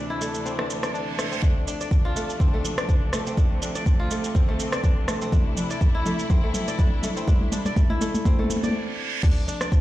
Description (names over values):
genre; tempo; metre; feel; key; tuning
afro house; 123 BPM; 4/4; swing 54% on 16ths; D minor; A4 = 440 Hz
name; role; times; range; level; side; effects
rich studio string section; sustained chords; 0.0-9.8 s; D2 to E4; -32 LUFS; left 2 dB; sidechain pumping
kora; arpeggios; 0.0-9.8 s; A3 to D5; -30 LUFS; equal; sidechain pumping, ping-pong delay
afro-pop drum kit; drums; 0.2-9.8 s; crash cymbal, rim click, shaker, toms; -29 LUFS; equal; none
reverse cymbal; sound effects; 0.7-1.4, 8.6-9.2 s; none; -33 LUFS; right 6 dB; none
warm 808-style bass; bass; 1.4-9.3 s; A1 to D2; -33 LUFS; equal; none
electronic kick drum; drums; 1.4-9.8 s; none; -21 LUFS; equal; none
room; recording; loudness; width
little or no reverb; played on a big sound system in a bare room, stone room reverb; -21 LUFS; side -15 dB against mid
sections
0.0-1.4 A section; 1.4-9.2 B section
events
reverse cymbal 0.7-1.4, 8.6-9.2; build-up 1.4-9.2; drum fill 1.4-8.7; stop 8.7-9.2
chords
0.0 Am/D; 1.4 Dm7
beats
0.45 0.94 | 1.43 1.92 2.40 2.89 | 3.38 3.87 4.35 4.84 | 5.33 5.82 6.30 6.79 | 7.28 7.77 8.26 8.74 | 9.23 9.72